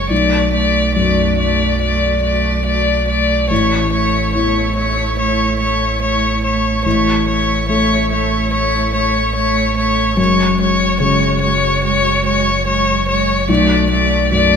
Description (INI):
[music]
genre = neoclassical piano and strings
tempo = 72 BPM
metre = 4/4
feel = rubato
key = A major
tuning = A4 = 439 Hz
[part]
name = rich violin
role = melody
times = 0.0-14.6 s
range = C#5 to D5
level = -16 LUFS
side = left 4 dB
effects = none
[part]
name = rich cello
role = second line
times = 0.0-14.6 s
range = G#3 to A3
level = -21 LUFS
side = right 9 dB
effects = none
[part]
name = felt-muted upright piano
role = accompaniment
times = 0.0-14.6 s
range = A1 to A3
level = -20 LUFS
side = left 4 dB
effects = none
[part]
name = rich chamber string section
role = sustained chords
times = 0.0-14.6 s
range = G#3 to D5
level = -27 LUFS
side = equal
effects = none
[part]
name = sub bass with octave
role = bass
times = 0.0-14.6 s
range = F#1 to B1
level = -21 LUFS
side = right 2 dB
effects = none
[sound]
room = moderate scoring stage reverb, RT60 1.8 s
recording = minimal, uncompressed stereo recording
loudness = -13 LUFS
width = side -7 dB against mid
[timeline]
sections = 0.0-14.6 A section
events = none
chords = 0.1 Bm7; 3.5 A; 10.2 F#sus2; 13.5 Bm7